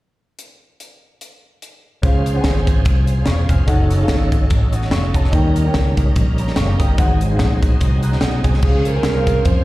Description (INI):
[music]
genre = uptempo gospel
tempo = 146 BPM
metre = 4/4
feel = swing 55% on 8ths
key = Db major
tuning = A4 = 439 Hz
[part]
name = crisp fusion drum kit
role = drums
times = 0.4-9.6 s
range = crash cymbal, hi-hat, kick drum, snare drum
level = -18 LUFS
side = equal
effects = none
[part]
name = warm grand piano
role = accompaniment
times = 2.0-9.6 s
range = Ab2 to Gb6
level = -24 LUFS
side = left 1 dB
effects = slapback echo
[part]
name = bright tonewheel organ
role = sustained chords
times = 2.0-9.6 s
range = F3 to C5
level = -26 LUFS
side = right 3 dB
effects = fast rotary speaker, overdrive, chorus vibrato
[part]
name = fingered electric bass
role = bass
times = 2.0-9.6 s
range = Fb1 to F2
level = -18 LUFS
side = equal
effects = none
[part]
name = mellow alto saxophone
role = melody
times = 8.6-9.6 s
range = Ab4 to C5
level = -21 LUFS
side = right 3 dB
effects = slapback echo
[sound]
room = little or no reverb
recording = live gig heard through the venue's PA, recital hall reverb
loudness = -14 LUFS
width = side -18 dB against mid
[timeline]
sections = 0.4-2.0 A section; 2.0-8.6 B section; 8.6-9.6 C section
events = none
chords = 0.4 N.C.; 2.0 Dbmaj7; 3.7 Gbm6; 5.3 Eb7; 7.0 Ab7; 8.6 Dbmaj7